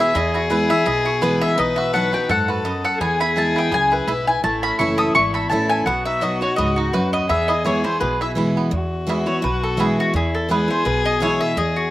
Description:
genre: bluegrass.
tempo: 168 BPM.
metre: 4/4.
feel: swing 55% on 8ths.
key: E major.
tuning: A4 = 440 Hz.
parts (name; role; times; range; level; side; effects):
bluegrass banjo; melody; 0.0-11.3 s; E3 to A4; -27 LUFS; right 4 dB; slapback echo.
mandolin; melody; 0.0-11.9 s; F#4 to D#6; -21 LUFS; left 1 dB; slapback echo.
dark fiddle; second line; 0.0-11.9 s; E4 to B4; -24 LUFS; left 3 dB; slapback echo.
picked steel-string acoustic guitar; accompaniment; 0.0-11.9 s; E2 to F#4; -23 LUFS; right 1 dB; none.
upright bass; bass; 0.1-11.9 s; F#1 to F#2; -28 LUFS; equal; none.
room: little or no reverb.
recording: recorded outdoors, with no room sound.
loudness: -17 LUFS.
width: side -15 dB against mid.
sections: 0.0-8.7 A section; 8.7-11.9 A section.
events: none.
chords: 0.0 E; 1.6 B; 3.0 E; 4.4 A; 5.9 B; 7.3 E.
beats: | 0.15 0.51 0.87 1.22 | 1.58 1.94 2.30 2.65 | 3.01 3.37 3.72 4.08 | 4.44 4.80 5.15 5.51 | 5.87 6.22 6.58 6.94 | 7.29 7.65 8.01 8.36 | 8.72 9.08 9.43 9.79 | 10.15 10.50 10.86 11.22 | 11.57.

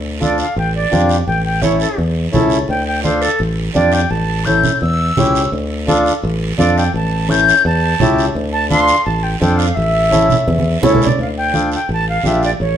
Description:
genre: latin, cumbia.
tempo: 170 BPM.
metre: 4/4.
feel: straight.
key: D harmonic minor.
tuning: A4 = 440 Hz.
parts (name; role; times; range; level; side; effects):
fingered electric bass; bass; 0.0-12.8 s; A1 to F2; -18 LUFS; equal; none.
silver concert flute; melody; 0.2-12.8 s; A4 to G6; -17 LUFS; equal; plate reverb.
accordion; accompaniment; 0.2-12.5 s; C#4 to A4; -17 LUFS; left 1 dB; none.
congas; percussion; 0.2-12.8 s; none; -20 LUFS; right 3 dB; none.
guiro; percussion; 0.2-12.8 s; none; -28 LUFS; right 6 dB; none.
room: wet studio reverb, RT60 0.8 s.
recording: heard from further back in the room.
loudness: -13 LUFS.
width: side -9 dB against mid.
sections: 0.0-11.2 A section; 11.2-12.8 B section.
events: flute solo 0.0-11.2; drum fill 10.5-11.2.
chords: 0.0 Dm; 1.3 A; 2.7 Dm; 4.1 A7; 5.5 Dm; 6.9 A7; 8.4 Dm; 9.8 A; 11.2 Dm.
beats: 0.21 0.57 0.92 | 1.28 1.63 1.99 2.34 | 2.69 3.05 3.40 3.76 | 4.11 4.47 4.82 5.17 | 5.53 5.88 6.24 6.59 | 6.94 7.30 7.65 8.00 | 8.36 8.71 9.06 9.42 | 9.77 10.12 10.48 10.83 | 11.19 11.54 11.89 12.25 | 12.60.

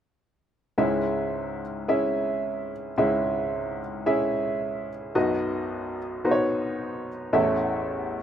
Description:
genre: pop.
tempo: 110 BPM.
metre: 4/4.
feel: straight.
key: C# minor.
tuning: A4 = 440 Hz.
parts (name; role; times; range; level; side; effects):
clear upright piano; accompaniment; 0.8-8.2 s; A1 to E5; -24 LUFS; equal; none.
room: moderate small room ambience, RT60 0.5 s.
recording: rough home demo mix.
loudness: -24 LUFS.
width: side -9 dB against mid.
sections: 0.8-8.2 A section.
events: none.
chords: 0.8 C#m; 5.2 B; 7.3 A.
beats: | 0.78 1.33 1.88 2.42 | 2.97 3.52 4.06 4.61 | 5.15 5.70 6.24 6.79 | 7.33 7.88.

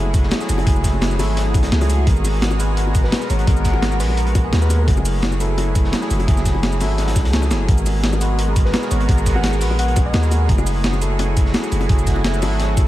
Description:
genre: liquid drum and bass.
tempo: 171 BPM.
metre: 4/4.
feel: straight.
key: unclear.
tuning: A4 = 437 Hz.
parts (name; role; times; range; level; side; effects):
overdriven tine electric piano; accompaniment; 0.0-12.9 s; F#3 to B4; -25 LUFS; equal; ping-pong delay.
lush unison pad; sustained chords; 0.0-12.9 s; B3 to A#4; -27 LUFS; right 1 dB; chorus, phaser, sidechain pumping.
long sustained 808-style bass; bass; 0.0-12.9 s; F#1 to D#2; -19 LUFS; equal; tube saturation.
breakbeat sampler-style drum kit; drums; 0.1-12.8 s; hi-hat, shaker, snare drum; -25 LUFS; equal; none.
crunchy breakbeat drum kit; drums; 0.1-12.9 s; hi-hat, snare drum; -33 LUFS; equal; high-pass filter on hats, high-pass filter on snare, high-pass filter on room.
electronic kick drum; drums; 0.1-12.8 s; none; -17 LUFS; equal; none.
bongos; percussion; 0.3-12.8 s; none; -31 LUFS; left 4 dB; none.
soft struck synth lead; melody; 3.0-4.9, 8.7-10.3 s; G#4 to F#5; -32 LUFS; left 1 dB; chorus, ping-pong delay.
room: light reverb, digital ambience.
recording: none.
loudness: -15 LUFS.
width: side -15 dB against mid.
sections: 0.0-12.9 A section.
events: drum fill 7.5.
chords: 0.0 F#m9; 2.1 G#m9; 4.9 F#m9; 7.7 G#m9; 10.5 F#m9.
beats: 0.32 | 0.67 1.02 1.37 1.72 | 2.07 2.42 2.77 3.12 | 3.47 3.83 4.18 4.53 | 4.88 5.23 5.58 5.93 | 6.28 6.63 6.98 7.33 | 7.68 8.04 8.39 8.74 | 9.09 9.44 9.79 10.14 | 10.49 10.84 11.19 11.54 | 11.89 12.25 12.60.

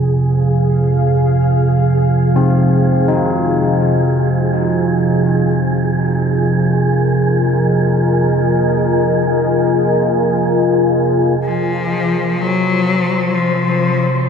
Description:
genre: dark ambient drone.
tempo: free time.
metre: none.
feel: none.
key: F minor.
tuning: A4 = 440 Hz.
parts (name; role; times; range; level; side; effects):
deep dark ambient pad; sustained chords; 0.0-14.3 s; F3 to F5; -17 LUFS; left 2 dB; chorus, built-in reverb.
deep rumbling drone; drone; 0.0-14.3 s; F2 to C3; -17 LUFS; right 2 dB; built-in reverb.
wind-like tuned noise texture; texture; 0.0-14.3 s; Ab4 to C5; -22 LUFS; right 3 dB; built-in reverb.
carillon bells; arpeggios; 2.4-8.9 s; C4 to Eb4; -23 LUFS; left 4 dB; tape echo.
rich cello; melody; 11.4-14.3 s; F3 to Gb3; -16 LUFS; left 3 dB; tape echo.
room: wet huge ambient reverb, RT60 9.3 s.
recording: dark, warm production.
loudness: -12 LUFS.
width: side -7 dB against mid.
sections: 0.0-11.4 A section; 11.4-14.3 B section.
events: none.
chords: 0.0 Fmadd11; 11.4 Fm.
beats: free time.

